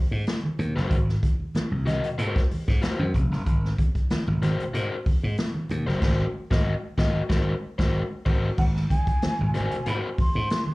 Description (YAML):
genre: funk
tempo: 94 BPM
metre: 4/4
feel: straight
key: Ab mixolydian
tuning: A4 = 441 Hz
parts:
  - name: slap bass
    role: bass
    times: 0.1-10.5 s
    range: F1 to Ab2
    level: -25 LUFS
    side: equal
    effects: none
  - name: swinging big-band drum kit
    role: drums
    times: 0.3-10.7 s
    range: crash cymbal, hi-hat, kick drum, snare drum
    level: -26 LUFS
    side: equal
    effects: none
  - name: congas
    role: percussion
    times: 0.3-10.7 s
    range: none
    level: -31 LUFS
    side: right 1 dB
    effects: none
  - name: crunchy overdriven guitar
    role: accompaniment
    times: 0.8-10.1 s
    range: Gb4 to Eb5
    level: -30 LUFS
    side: left 2 dB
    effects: slapback echo
  - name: breathy mellow concert flute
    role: melody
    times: 8.6-10.7 s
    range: Gb5 to C6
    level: -30 LUFS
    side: equal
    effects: slapback echo, tape echo
room: light reverb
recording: live gig heard through the venue's PA, cassette tape, club reverb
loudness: -22 LUFS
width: side -22 dB against mid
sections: 0.0-8.6 A section; 8.6-10.7 B section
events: band accent 6.0-8.6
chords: 0.0 Ab9